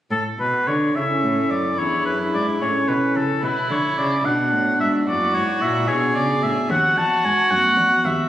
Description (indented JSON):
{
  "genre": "classical, baroque-style sonata movement with continuo",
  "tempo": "73 BPM (dotted quarters)",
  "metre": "6/8",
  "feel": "rubato",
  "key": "A major",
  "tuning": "A4 = 441 Hz",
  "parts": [
    { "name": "clear oboe", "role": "melody", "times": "0.1-8.3 s", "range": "A4 to A5", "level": "-21 LUFS", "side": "left 1 dB", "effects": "none" },
    { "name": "pipe organ, stopped flute", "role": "accompaniment", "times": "0.1-8.3 s", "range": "D#2 to A4", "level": "-26 LUFS", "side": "left 1 dB", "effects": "none" },
    { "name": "rich cello", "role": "bass", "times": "0.1-8.3 s", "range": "D#2 to D3", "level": "-26 LUFS", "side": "right 1 dB", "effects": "none" },
    { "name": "warm violin", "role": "second line", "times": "0.9-8.3 s", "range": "C#4 to G#4", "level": "-23 LUFS", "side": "right 2 dB", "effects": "none" }
  ],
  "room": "wet scoring stage reverb, RT60 1.7 s",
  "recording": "recorded on a phone in the room, studio reverb, compression",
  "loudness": "-17 LUFS",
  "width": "side -12 dB against mid",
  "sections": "0.1-8.3 A section",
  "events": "none",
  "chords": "0.1 A; 1.8 E7; 2.6 A; 3.4 Bm; 5.1 F#7; 5.9 Bm; 6.7 B7/D#"
}